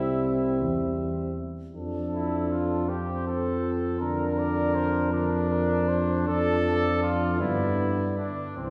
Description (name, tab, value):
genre	classical, brass quintet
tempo	53 BPM (dotted quarters)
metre	6/8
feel	rubato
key	unclear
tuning	A4 = 440 Hz
part	warm trumpet	melody	0.0-8.7 s	A4 to E5	-36 LUFS	equal	none
part	warm trumpet	second line	0.0-8.7 s	C4 to Bb4	-33 LUFS	equal	none
part	clear trombone	accompaniment	0.0-8.7 s	D3 to G3	-36 LUFS	equal	none
part	mellow French horn	accompaniment	0.0-8.7 s	B3 to D4	-32 LUFS	equal	none
part	dark tuba	bass	0.0-8.7 s	C2 to G2	-32 LUFS	equal	none
room	wet concert hall reverb, RT60 1.8 s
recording	heard from further back in the room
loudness	-26 LUFS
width	mono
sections	0.0-8.7 A section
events	none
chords	0.0 C; 1.8 F; 4.0 Bb/F; 7.4 G